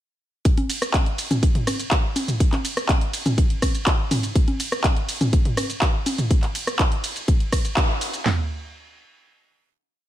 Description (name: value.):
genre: house.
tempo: 123 BPM.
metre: 4/4.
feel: straight.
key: none.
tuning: none.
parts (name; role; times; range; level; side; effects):
pop drum kit; drums; 0.5-8.4 s; handclaps, kick drum, snare drum, toms; -20 LUFS; equal; studio reverb.
pop drum kit; drums; 0.5-8.2 s; handclaps, hi-hat, ride cymbal, rim click, shaker; -25 LUFS; equal; studio reverb.
electronic congas and toms; percussion; 0.6-6.3 s; none; -25 LUFS; equal; sidechain pumping on perc, studio reverb, sidechain pumping on toms.
room: little or no reverb.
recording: none.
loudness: -19 LUFS.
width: side -13 dB against mid.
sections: 0.5-8.3 drop; 8.3-10.1 final hit.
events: drop 0.5-8.3; band accent 7.8.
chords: none.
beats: | 0.45 0.94 1.43 1.92 | 2.40 2.89 3.38 3.87 | 4.36 4.84 5.33 5.82 | 6.31 6.79 7.28 7.77 | 8.26.